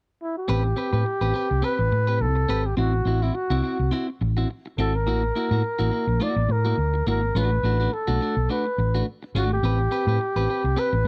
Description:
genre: disco.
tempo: 105 BPM.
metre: 4/4.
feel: swing 56% on 16ths.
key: A dorian.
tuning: A4 = 439 Hz.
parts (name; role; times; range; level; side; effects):
breathy flugelhorn; melody; 0.2-11.1 s; E4 to D5; -28 LUFS; equal; none.
clean electric guitar; accompaniment; 0.5-11.1 s; A3 to B4; -30 LUFS; equal; none.
hollow-body short-scale fingered electric bass; bass; 0.5-11.1 s; G#1 to A2; -25 LUFS; equal; none.
room: small room ambience.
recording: dry, close 1970s-style studio recording.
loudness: -24 LUFS.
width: mono.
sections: 0.5-11.1 A section.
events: none.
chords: 0.5 Am9; 2.8 G#7b9b13; 5.1 F#7#9/A; 7.3 Bm7/A; 9.6 Am9.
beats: | 0.48 1.05 1.63 2.20 | 2.77 3.34 3.92 4.49 | 5.06 5.63 6.20 6.78 | 7.35 7.92 8.49 9.06 | 9.63 10.20 10.77.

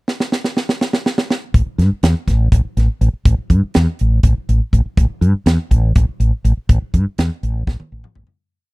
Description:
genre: electric jazz fusion.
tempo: 244 BPM (eighths).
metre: 7/8.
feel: straight.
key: unclear.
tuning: A4 = 440 Hz.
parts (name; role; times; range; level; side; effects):
crisp fusion drum kit; drums; 0.1-8.4 s; hi-hat, kick drum, snare drum, toms; -15 LUFS; equal; none.
mellow fretless electric bass; bass; 1.5-8.3 s; A1 to G2; -14 LUFS; equal; none.
room: little or no reverb.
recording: dry, close 1970s-style studio recording.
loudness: -14 LUFS.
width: side -24 dB against mid.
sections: 0.0-1.5 pickup bar; 1.5-8.4 groove.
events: drum fill 0.1-1.5, 7.7-8.4; fade-out 6.7-8.4.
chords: none.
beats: 0.07 0.31 0.56 0.80 1.05 1.29 | 1.54 1.78 2.03 2.27 2.52 2.76 3.01 | 3.25 3.50 3.75 3.99 4.24 4.48 4.73 | 4.97 5.22 5.47 5.71 5.96 6.20 6.45 | 6.69 6.94 7.18 7.43 7.67 7.92 8.16.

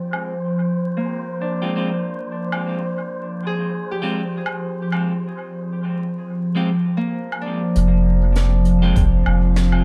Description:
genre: ambient dub.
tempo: 100 BPM.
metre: 4/4.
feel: swing 55% on 16ths.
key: F dorian.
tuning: A4 = 440 Hz.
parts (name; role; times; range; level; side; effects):
warbly tape-like pad; sustained chords; 0.0-9.8 s; F3 to F5; -25 LUFS; equal; chorus, built-in reverb, phaser.
wind-like tuned noise texture; texture; 0.0-9.8 s; Ab3 to C5; -35 LUFS; equal; built-in reverb.
soft brush drum kit; drums; 0.1-9.8 s; hi-hat, snare drum, woodblock; -32 LUFS; equal; low-pass filter on hats, low-pass filter on snare, low-pass filter on perc, low-pass filter on room, dub echo.
Celtic harp; arpeggios; 1.0-9.8 s; Bb3 to Ab4; -32 LUFS; equal; low-pass filter, dub echo.
clean electric guitar; stabs; 1.6-9.0 s; Ab3 to G4; -34 LUFS; equal; low-pass filter, dub echo.
soft dub sub bass; bass; 7.8-9.8 s; F1; -18 LUFS; equal; none.
electronic kick drum; drums; 9.0-9.1 s; none; -21 LUFS; equal; none.
room: light reverb, studio reverb.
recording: echo-heavy mix, vinyl crackle.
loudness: -21 LUFS.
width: mono.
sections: 0.0-7.8 A section; 7.8-9.8 B section.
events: filter sweep on ambient pad 0.0-7.8.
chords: 0.0 Fmadd9; 7.8 Fm.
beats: | 0.56 1.16 1.76 2.36 | 2.96 3.56 4.16 4.76 | 5.36 5.96 6.56 7.16 | 7.76 8.36 8.96 9.56.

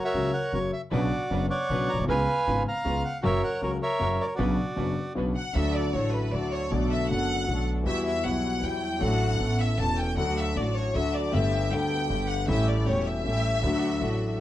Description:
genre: tango.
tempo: 156 BPM.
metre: 3/4.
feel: rubato.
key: B harmonic minor, D major from 5.5 s.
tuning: A4 = 440 Hz.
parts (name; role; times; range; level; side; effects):
bandoneon; melody; 0.0-5.1 s; F#4 to A#5; -27 LUFS; right 1 dB; none.
warm concert grand piano; accompaniment; 0.1-14.4 s; E1 to A4; -29 LUFS; left 2 dB; none.
upright bass; bass; 0.1-14.4 s; E1 to E2; -30 LUFS; right 1 dB; none.
dark chamber string section; stabs; 0.9-14.4 s; F#3 to B4; -36 LUFS; right 2 dB; none.
clear studio violin section; second line; 5.4-14.4 s; B4 to A5; -30 LUFS; left 2 dB; none.
room: light reverb.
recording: worn, warbling old tape, cassette tape, warbly pitch drift.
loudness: -24 LUFS.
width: side -13 dB against mid.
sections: 0.0-5.5 A section; 5.5-14.4 B section.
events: violin section solo 5.5-14.4.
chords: 0.0 F#; 0.9 Bmadd9; 2.1 C#7; 3.2 F#; 4.4 Bmadd9; 5.5 D; 6.7 Bm7; 7.9 Emadd9; 9.0 D/A; 9.4 Aadd9; 10.2 D; 11.3 Gadd9; 12.5 A7; 13.6 D.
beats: 0.15 0.53 | 0.92 1.31 1.70 | 2.08 2.47 2.85 | 3.24 3.62 4.00 | 4.38 4.77 5.16 | 5.55 5.94 6.33 | 6.71 7.10 7.48 | 7.86 8.24 8.63 | 9.01 9.39 9.78 | 10.17 10.56 10.94 | 11.33 11.71 12.10 | 12.48 12.86 13.25 | 13.63 14.02.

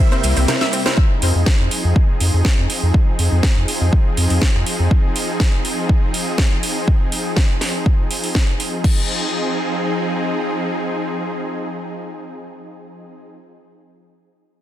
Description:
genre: progressive house.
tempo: 122 BPM.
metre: 4/4.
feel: straight.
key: F minor.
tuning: A4 = 440 Hz.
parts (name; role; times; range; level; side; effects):
supersaw pad; sustained chords; 0.0-13.2 s; C3 to Ab4; -23 LUFS; equal; sidechain pumping.
analog pluck; arpeggios; 0.0-1.0 s; C4 to E5; -24 LUFS; left 2 dB; chorus, sidechain pumping, ping-pong delay.
wide unison pluck; stabs; 0.0-1.0 s; C3 to C5; -25 LUFS; equal; sidechain pumping, ping-pong delay.
house drum kit; drums; 0.1-8.9 s; crash cymbal, hi-hat, ride cymbal, shaker, snare drum; -22 LUFS; right 1 dB; sidechain pumping on cymbals, sidechain pumping on perc, sidechain pumping on hats.
round analog bass; bass; 0.2-4.9 s; C2 to F2; -16 LUFS; equal; sidechain pumping.
electronic kick drum; drums; 1.0-8.9 s; none; -16 LUFS; equal; overdrive.
room: little or no reverb.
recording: dense, heavily limited modern master.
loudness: -15 LUFS.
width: side -12 dB against mid.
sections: 1.0-8.8 A section; 8.8-12.8 B section.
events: drum fill 0.5-1.0.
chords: 0.0 C7; 1.0 Fm7.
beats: 0.48 | 0.97 1.47 1.96 2.45 | 2.94 3.43 3.93 4.42 | 4.91 5.40 5.89 6.38 | 6.88 7.37 7.86 8.35 | 8.84 9.34 9.83 10.32 | 10.81 11.30 11.79 12.29.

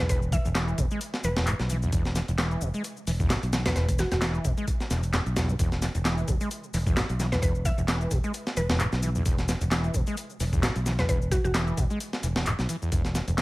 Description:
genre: breakbeat, breaks.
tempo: 131 BPM.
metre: 4/4.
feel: swing 56% on 16ths.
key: unclear.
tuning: A4 = 441 Hz.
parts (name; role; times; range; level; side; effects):
mallet-like synth pluck; melody; 0.0-4.2, 7.3-11.5 s; F#4 to E5; -34 LUFS; equal; chorus, AM radio sound, cassette tape, dub echo.
overdriven acid bass; riff; 0.0-13.4 s; E2 to G#3; -31 LUFS; equal; distortion, wide subtle chorus.
fingered electric bass; bass; 0.0-13.4 s; E1 to B1; -28 LUFS; equal; none.
electronic shaker and handclaps; drums; 0.0-13.4 s; none; -35 LUFS; left 1 dB; none.
breakbeat sampler-style drum kit; drums; 0.1-13.4 s; hi-hat, kick drum, snare drum; -28 LUFS; equal; none.
room: digital ambience.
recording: vinyl crackle.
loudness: -24 LUFS.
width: side -20 dB against mid.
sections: 0.0-13.4 A section.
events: none.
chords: 0.0 E5.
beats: | 0.10 0.56 1.01 1.47 | 1.93 2.39 2.85 3.30 | 3.76 4.22 4.68 5.13 | 5.59 6.05 6.51 6.97 | 7.42 7.88 8.34 8.80 | 9.26 9.71 10.17 10.63 | 11.09 11.55 12.01 12.46 | 12.92 13.38.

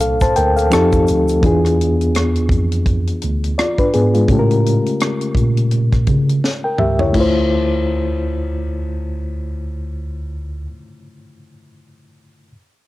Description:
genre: R&B, neo-soul.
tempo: 84 BPM.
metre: 4/4.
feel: swing 58% on 16ths.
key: D minor.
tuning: A4 = 440 Hz.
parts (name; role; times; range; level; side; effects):
reed electric piano; accompaniment; 0.0-12.5 s; Bb2 to A5; -18 LUFS; left 1 dB; fast tremolo, cassette tape.
mellow tine electric piano; bass; 0.0-10.7 s; C2 to C#3; -18 LUFS; equal; medium stereo tremolo, transformer saturation.
tight funk drum kit; drums; 0.0-7.3 s; crash cymbal, hi-hat, kick drum, rim click, snare drum, toms; -20 LUFS; equal; cassette tape.
egg shaker and finger snaps; percussion; 0.0-1.4 s; none; -33 LUFS; right 6 dB; none.
room: light reverb, studio reverb.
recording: home recording on cassette.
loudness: -14 LUFS.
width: side -17 dB against mid.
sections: 0.0-7.1 A section; 7.1-10.0 B section.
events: drum fill 6.4-7.1.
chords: 0.0 Bbmaj7; 0.7 F9; 1.4 E7b9; 4.3 A7b9; 7.1 Dm9.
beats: 0.00 0.71 | 1.43 2.14 2.86 3.57 | 4.28 5.00 5.71 6.43 | 7.14 7.86 8.57 9.28.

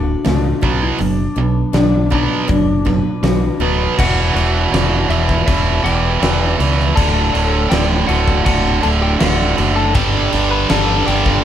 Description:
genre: quiet-loud alternative rock.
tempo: 80 BPM.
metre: 4/4.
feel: straight.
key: unclear.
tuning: A4 = 440 Hz.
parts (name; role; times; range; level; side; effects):
lightly driven lead guitar; melody; 0.0-11.4 s; D4 to B5; -22 LUFS; left 5 dB; none.
picked acoustic archtop guitar; arpeggios; 0.0-4.0 s; A2 to B4; -22 LUFS; left 5 dB; none.
distorted electric guitar; riff; 0.0-11.4 s; D2 to B3; -17 LUFS; right 6 dB; overdrive.
modern bright fingered electric bass; bass; 0.0-11.4 s; D1 to C#2; -18 LUFS; left 1 dB; none.
big rock drum kit; drums; 0.3-11.4 s; crash cymbal, hi-hat, kick drum, snare drum; -20 LUFS; left 1 dB; none.
scooped high-gain guitar; riff; 9.9-11.4 s; G2 to G3; -22 LUFS; left 3 dB; distortion.
room: light reverb.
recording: band playing live in one room.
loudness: -13 LUFS.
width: side -10 dB against mid.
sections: 0.0-4.0 A section; 4.0-11.4 B section.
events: none.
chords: 0.0 D; 0.6 Bm; 4.0 Em; 7.0 D; 9.9 G.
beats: 0.26 | 1.00 1.75 2.49 3.24 | 3.99 4.73 5.48 6.22 | 6.97 7.71 8.46 9.20 | 9.95 10.69 11.44.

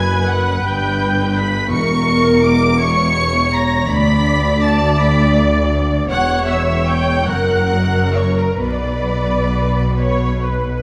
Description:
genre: classical, slow romantic movement for string orchestra.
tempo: 43-57 BPM (dotted quarters).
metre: 6/8.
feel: rubato.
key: B minor.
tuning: A4 = 440 Hz.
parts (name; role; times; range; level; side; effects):
muted symphonic violin section; melody; 0.0-10.8 s; A#5 to D7; -26 LUFS; equal; none.
muted studio violin section; second line; 0.0-10.8 s; A#4 to D6; -25 LUFS; equal; none.
muted symphonic viola section; accompaniment; 0.0-10.8 s; A#4 to D5; -22 LUFS; equal; none.
muted symphonic cello section; bass; 0.0-10.8 s; D2 to B2; -22 LUFS; equal; none.
muted symphonic double bass section; bass; 0.0-10.8 s; E1 to D2; -21 LUFS; equal; none.
room: wet scoring stage reverb, RT60 1.7 s.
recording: vinyl crackle.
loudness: -16 LUFS.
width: mono.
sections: 0.0-10.8 A section.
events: none.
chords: 0.0 F#sus24; 0.7 G; 1.7 A#dim/E; 3.9 Bm/D; 6.1 Em69; 7.3 F#; 8.6 Bm.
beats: 0.65 | 1.72 2.80 | 3.90 4.99 | 6.10 7.29 | 8.61 9.99.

